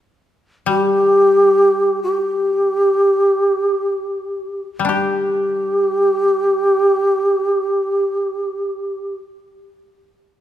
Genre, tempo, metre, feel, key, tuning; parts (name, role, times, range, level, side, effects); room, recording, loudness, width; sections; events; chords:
japanese traditional, Japanese chamber music; free time; A4 = 440 Hz
breathy mellow long shakuhachi; melody; 0.7-9.2 s; G4; -15 LUFS; equal
koto; accompaniment; 0.7-9.2 s; G3 to G4; -23 LUFS; left 5 dB
light reverb; minimal, uncompressed stereo recording; -14 LUFS; side -11 dB against mid
0.0-4.9 A section; 4.9-9.4 B section
slowing down 0.0-4.9